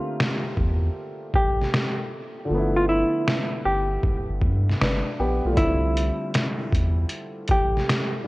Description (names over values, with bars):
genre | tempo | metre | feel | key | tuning
lo-fi hip hop | 78 BPM | 4/4 | swing 66% on 16ths | unclear | A4 = 440 Hz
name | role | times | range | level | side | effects
hollow-body jazz guitar | melody | 0.0-8.1 s | E4 to G4 | -26 LUFS | equal | low-pass filter, analog delay
warm upright piano | accompaniment | 0.0-8.3 s | D3 to E5 | -29 LUFS | equal | cassette tape, low-pass filter
trip hop sampler-style drum kit | drums | 0.2-8.1 s | finger snaps, hi-hat, kick drum, snare drum | -24 LUFS | equal | none
warm sub bass | bass | 0.6-7.8 s | G1 to G2 | -24 LUFS | equal | tube saturation
room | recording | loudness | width
light reverb | worn, warbling old tape, cassette tape, warbly pitch drift | -21 LUFS | side -20 dB against mid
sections
0.0-8.3 A section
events
break 0.0-5.6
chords
0.0 Dm9; 2.5 G13; 5.6 C6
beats
0.19 0.96 1.73 | 2.50 3.27 4.04 4.80 | 5.57 6.34 7.11 7.88